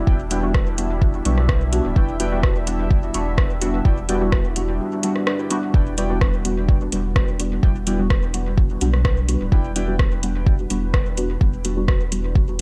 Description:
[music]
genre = dub techno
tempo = 127 BPM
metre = 4/4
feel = straight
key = E minor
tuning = A4 = 440 Hz
[part]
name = deep dark ambient pad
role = sustained chords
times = 0.0-12.6 s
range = G3 to E5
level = -32 LUFS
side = equal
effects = chorus, built-in reverb, sidechain pumping
[part]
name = warm sub bass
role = bass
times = 0.0-12.6 s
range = D1 to B1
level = -26 LUFS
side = equal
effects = sidechain pumping
[part]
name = warbly lo-fi synth keys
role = riff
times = 0.1-10.0 s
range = E4 to G5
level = -37 LUFS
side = equal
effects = chorus, sidechain pumping, dub echo
[part]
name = electronic kick drum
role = drums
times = 0.1-12.5 s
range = none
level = -20 LUFS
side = equal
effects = none
[part]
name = deep mellow chord stab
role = stabs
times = 0.3-12.6 s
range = G3 to F#4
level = -28 LUFS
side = equal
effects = chorus, phaser, sidechain pumping, dub echo
[part]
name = soft vintage rhythm box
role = drums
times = 0.3-12.6 s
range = hi-hat, rim click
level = -30 LUFS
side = equal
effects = overdrive, dub echo
[sound]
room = little or no reverb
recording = echo-heavy mix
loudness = -20 LUFS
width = mono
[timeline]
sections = 0.0-12.6 A section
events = none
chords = 0.0 Em7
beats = | 0.07 0.54 1.02 1.49 | 1.96 2.43 2.91 3.38 | 3.85 4.32 4.80 5.27 | 5.74 6.21 6.69 7.16 | 7.63 8.10 8.58 9.05 | 9.52 9.99 10.47 10.94 | 11.41 11.88 12.36

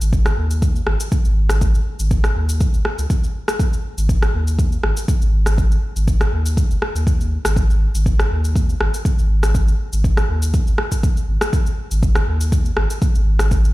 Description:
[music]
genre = afro house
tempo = 121 BPM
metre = 4/4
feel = swing 53% on 16ths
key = unclear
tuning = A4 = 440 Hz
[part]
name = warm sub bass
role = bass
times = 0.0-13.7 s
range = F#1 to D#2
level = -18 LUFS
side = equal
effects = sidechain pumping
[part]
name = electronic shaker and rim click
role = drums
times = 0.0-13.7 s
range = none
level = -25 LUFS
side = left 1 dB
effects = studio reverb
[part]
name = electronic kick drum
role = drums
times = 0.1-13.6 s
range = none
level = -17 LUFS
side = equal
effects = studio reverb
[sound]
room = digital ambience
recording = played on a big sound system in a bare room, stone room reverb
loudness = -16 LUFS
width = side -18 dB against mid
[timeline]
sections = 0.0-13.7 A section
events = none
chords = none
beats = 0.13 0.62 1.12 | 1.61 2.11 2.61 3.10 | 3.60 4.09 4.59 5.09 | 5.58 6.08 6.57 7.07 | 7.57 8.06 8.56 9.05 | 9.55 10.04 10.54 11.04 | 11.53 12.03 12.52 13.02 | 13.52

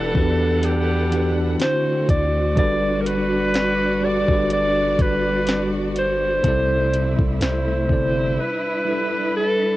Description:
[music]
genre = contemporary R&B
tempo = 62 BPM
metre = 4/4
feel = swing 54% on 16ths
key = unclear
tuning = A4 = 442 Hz
[part]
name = warm alto saxophone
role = melody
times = 0.0-9.8 s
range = G4 to D5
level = -22 LUFS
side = equal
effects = cassette tape
[part]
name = bell-like tine electric piano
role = accompaniment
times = 0.0-9.8 s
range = C3 to D5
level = -24 LUFS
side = equal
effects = fast stereo tremolo
[part]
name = warm studio string section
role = sustained chords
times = 0.0-9.8 s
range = C3 to F#5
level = -26 LUFS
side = equal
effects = sidechain pumping
[part]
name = long sustained 808-style bass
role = bass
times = 0.0-8.4 s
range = E1 to E2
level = -25 LUFS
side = equal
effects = none
[part]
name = smooth R&B drum kit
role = drums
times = 0.1-8.1 s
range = hi-hat, kick drum, snare drum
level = -21 LUFS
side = equal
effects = cassette tape
[sound]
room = light reverb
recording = home recording on cassette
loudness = -18 LUFS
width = side -16 dB against mid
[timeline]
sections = 0.0-9.8 A section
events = drums muted 8.4-9.8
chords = 0.0 Em11; 1.6 D7; 2.6 Gmaj7; 6.4 C6; 8.4 G6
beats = 0.64 1.60 | 2.57 3.54 4.51 5.47 | 6.44 7.41 8.38 9.35

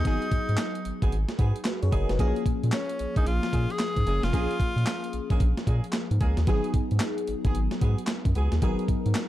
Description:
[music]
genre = R&B, new jack swing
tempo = 112 BPM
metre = 4/4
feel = swing 63% on 16ths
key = G# dorian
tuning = A4 = 443 Hz
[part]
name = edgy tenor saxophone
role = melody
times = 0.0-5.3 s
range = C#4 to G#4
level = -32 LUFS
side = left 1 dB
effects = digital delay
[part]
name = FM electric piano with soft pad layer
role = accompaniment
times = 0.0-9.3 s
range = E#3 to D#5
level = -32 LUFS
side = left 2 dB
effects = chorus, phaser
[part]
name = round analog bass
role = bass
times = 0.0-9.1 s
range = E#1 to A#2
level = -26 LUFS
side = equal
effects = none
[part]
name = mellow horn section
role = stabs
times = 0.1-8.9 s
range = A#3 to G#4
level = -37 LUFS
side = right 2 dB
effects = none
[part]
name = crisp 8-bit digital drum machine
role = drums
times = 0.1-9.3 s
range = handclaps, hi-hat, kick drum, snare drum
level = -27 LUFS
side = equal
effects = none
[sound]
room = little or no reverb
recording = dark, warm production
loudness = -24 LUFS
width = side -14 dB against mid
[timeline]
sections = 0.0-9.3 A section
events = none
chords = 0.0 G#m7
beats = | 0.05 0.59 1.12 1.66 | 2.19 2.73 3.26 3.80 | 4.34 4.87 5.41 5.94 | 6.48 7.01 7.55 8.09 | 8.62 9.16

